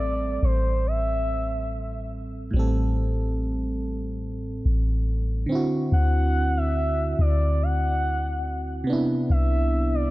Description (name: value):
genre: contemporary R&B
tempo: 71 BPM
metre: 4/4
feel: straight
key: A dorian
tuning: A4 = 440 Hz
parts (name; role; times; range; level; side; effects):
- gliding portamento lead; melody; 0.0-10.1 s; C5 to F#5; -28 LUFS; equal; chorus, tape echo
- FM electric piano; accompaniment; 0.0-10.1 s; A2 to A4; -28 LUFS; right 1 dB; chorus
- soft 808-style bass; bass; 0.0-10.1 s; A1 to D2; -24 LUFS; equal; none
room: digital ambience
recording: dark, warm production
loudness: -22 LUFS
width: side -18 dB against mid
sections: 0.0-10.1 A section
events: none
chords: 0.0 Am7; 5.5 D9; 8.9 Cmaj9